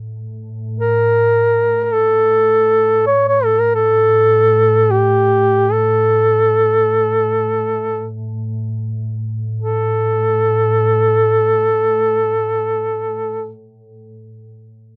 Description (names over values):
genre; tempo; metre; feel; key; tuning
caucasian folk, Caucasian lament; free time; none; none; unclear; A4 = 440 Hz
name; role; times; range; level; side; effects
glassy FM pad; drone; 0.0-13.5 s; A2; -25 LUFS; equal; ensemble chorus, built-in reverb
dark duduk; melody; 0.8-13.5 s; G4 to C#5; -15 LUFS; equal; none
room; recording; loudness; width
little or no reverb; dry, close 1970s-style studio recording; -15 LUFS; mono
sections
0.0-9.6 A section; 9.6-14.6 B section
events
slowing down 0.0-9.6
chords
none